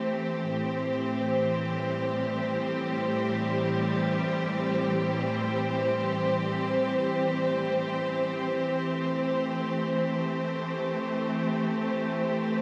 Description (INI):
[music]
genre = ambient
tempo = free time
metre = none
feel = none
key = unclear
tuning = A4 = 440 Hz
[part]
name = clear studio string section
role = solo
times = 0.0-12.6 s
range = A2 to C5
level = -28 LUFS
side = equal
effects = tape echo
[sound]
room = wet cathedral reverb, RT60 7.0 s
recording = in a vast, echoing space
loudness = -28 LUFS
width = mono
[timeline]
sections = 0.0-12.6 A section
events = none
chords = 0.0 Am7; 0.5 C/A; 8.4 Am7